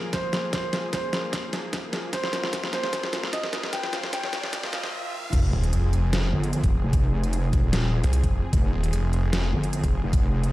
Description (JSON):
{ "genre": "heavy wobble dubstep", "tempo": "150 BPM", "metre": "4/4", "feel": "half-time", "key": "F minor", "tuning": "A4 = 440 Hz", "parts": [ { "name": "bright baby grand piano", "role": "melody", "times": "0.0-4.9 s", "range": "C5 to G5", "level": "-31 LUFS", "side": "right 1 dB", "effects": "low-pass filter, digital delay" }, { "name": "supersaw pad", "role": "sustained chords", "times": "0.0-10.5 s", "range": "F3 to Ab4", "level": "-35 LUFS", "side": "equal", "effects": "sidechain pumping" }, { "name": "riser, swell and sub drop", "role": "sound effects", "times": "1.2-6.9 s", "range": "none", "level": "-35 LUFS", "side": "equal", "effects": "none" }, { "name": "dubstep drum kit", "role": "drums", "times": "0.1-10.5 s", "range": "crash cymbal, hi-hat, snare drum", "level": "-29 LUFS", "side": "equal", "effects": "studio reverb" }, { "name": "electronic kick drum", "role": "drums", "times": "0.1-10.2 s", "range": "none", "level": "-24 LUFS", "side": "equal", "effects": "overdrive, studio reverb" }, { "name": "wobble bass", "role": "bass", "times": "5.3-10.5 s", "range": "Eb1 to G1", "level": "-24 LUFS", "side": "equal", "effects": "chorus, overdrive" }, { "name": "snarling distorted saw bass", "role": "bass", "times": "5.5-10.0 s", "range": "Eb1 to C2", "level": "-22 LUFS", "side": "equal", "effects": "distortion, overdrive" } ], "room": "light reverb", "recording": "played on a big sound system in a bare room, large studio reverb, high-pass filter", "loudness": "-23 LUFS", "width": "side -17 dB against mid", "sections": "0.0-5.3 A section; 5.3-10.5 B section", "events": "build-up 0.0-5.3; drum fill 0.0-4.9; filter sweep on grand piano 0.0-5.3; filter sweep 0.0-5.3; riser 1.2-5.3; swell 4.5-5.3; break 4.9-5.3; drop 5.3-10.5; impact 5.3-6.9", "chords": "0.0 Fm", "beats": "0.13 | 0.53 0.93 1.33 1.73 | 2.13 2.53 2.93 3.33 | 3.73 4.13 4.53 4.93 | 5.33 5.73 6.13 6.53 | 6.93 7.33 7.73 8.13 | 8.53 8.93 9.33 9.73 | 10.13" }